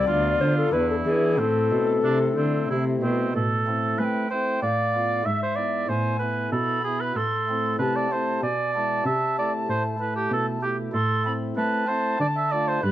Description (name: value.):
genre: classical, baroque-style sonata movement with continuo.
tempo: 95 BPM.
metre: 3/4.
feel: straight.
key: A minor.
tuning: A4 = 440 Hz.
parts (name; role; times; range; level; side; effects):
mellow hollow alto recorder; melody; 0.0-12.9 s; G#4 to C6; -27 LUFS; left 3 dB; none.
clear oboe; second line; 0.0-12.9 s; C4 to E5; -26 LUFS; right 3 dB; none.
pipe organ, flutes; accompaniment; 0.0-12.9 s; D2 to F4; -29 LUFS; equal; none.
dark cello; bass; 0.0-12.9 s; D2 to A3; -28 LUFS; right 1 dB; none.
room: moderate stone room reverb, RT60 1.1 s.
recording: worn, warbling old tape, cassette tape, warbly pitch drift.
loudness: -22 LUFS.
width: side -13 dB against mid.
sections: 0.0-3.3 A section; 3.3-12.9 B section.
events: none.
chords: 0.1 Bdim/D; 0.7 E7; 1.4 Am; 4.6 Bm7b5/A; 5.3 E/G#; 7.2 Am; 8.4 E7/B; 9.1 Am; 12.2 Dm.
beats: 0.08 0.73 | 1.38 2.04 2.69 | 3.35 3.99 4.62 | 5.25 5.89 6.52 | 7.16 7.79 8.42 | 9.05 9.68 10.31 | 10.94 11.57 12.20 | 12.83.